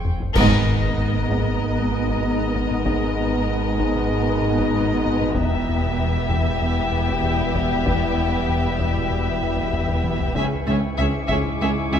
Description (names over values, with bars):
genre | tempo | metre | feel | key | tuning
cinematic, suspense film score | 96 BPM | 4/4 | straight | G# harmonic minor | A4 = 440 Hz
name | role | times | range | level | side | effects
muted chamber violin section | melody | 0.0-12.0 s | D#5 to G5 | -28 LUFS | left 3 dB | none
muted chamber violin section | second line | 0.0-12.0 s | G4 to A#4 | -30 LUFS | left 4 dB | none
muted chamber viola section | accompaniment | 0.0-12.0 s | B3 to C#4 | -30 LUFS | right 3 dB | none
flickering grainy texture | sustained chords | 0.0-12.0 s | B3 to A#5 | -30 LUFS | equal | built-in reverb
smooth synth bass | riff | 0.0-12.0 s | E2 to C#3 | -26 LUFS | left 1 dB | none
muted chamber cello section | bass | 0.0-12.0 s | C#2 to G#2 | -28 LUFS | right 3 dB | none
muted chamber double bass section | bass | 0.0-12.0 s | E1 to C#2 | -30 LUFS | right 3 dB | none
punchy sub bass | drone | 0.0-12.0 s | E1 to C#2 | -31 LUFS | equal | none
taiko ensemble | drums | 0.0-11.9 s | none | -29 LUFS | equal | none
mellow French horn section | sustained chords | 0.3-12.0 s | B3 to E4 | -29 LUFS | left 2 dB | none
bright trombone section | sustained chords | 0.4-12.0 s | G#2 to G#3 | -30 LUFS | right 2 dB | none
clash cymbals and concert bass drum | percussion | 0.4-1.6 s | none | -28 LUFS | equal | none
timpani | percussion | 0.4-1.3 s | G#2 | -29 LUFS | left 1 dB | none
muted chamber violin section | texture | 10.4-12.0 s | C#6 to D6 | -34 LUFS | left 2 dB | none
room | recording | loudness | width
wet scoring stage reverb, RT60 1.6 s | minimal, uncompressed stereo recording | -19 LUFS | side -8 dB against mid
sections
0.4-12.0 A section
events
drum fill 0.0-0.4, 9.7-10.4; band accent 0.4-1.0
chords
0.4 G#madd9; 5.4 Em; 10.4 C#m